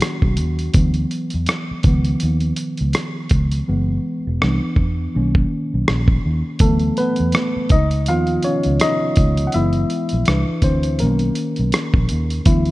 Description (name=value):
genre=R&B, neo-soul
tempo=82 BPM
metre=4/4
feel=swing 57% on 16ths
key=B major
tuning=A4 = 445 Hz
part: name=tine electric piano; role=accompaniment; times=0.0-12.7 s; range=D#3 to F#5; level=-21 LUFS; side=equal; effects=none
part: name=dusty soul sampler-style drum kit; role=drums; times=0.0-12.7 s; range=hi-hat, kick drum, rim click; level=-18 LUFS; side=equal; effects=none
part: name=vintage muted fingered electric bass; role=bass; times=0.2-12.7 s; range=E1 to E2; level=-19 LUFS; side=equal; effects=none
room=light reverb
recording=rough home demo mix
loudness=-16 LUFS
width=side -18 dB against mid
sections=0.0-12.7 A section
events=tine electric piano solo 0.0-12.7; hi-hats muted 3.7-6.6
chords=0.0 Bmaj9; 0.8 D69; 1.8 C#7; 3.7 F#7sus4; 4.4 Cmaj9; 5.1 Bmaj9; 6.6 D69; 7.7 C#7; 9.5 F#7sus4; 10.3 Cmaj9; 11.0 Bmaj9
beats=0.02 | 0.75 1.48 2.21 2.94 | 3.68 4.41 5.14 5.87 | 6.60 7.34 8.07 8.80 | 9.53 10.26 10.99 11.73 | 12.46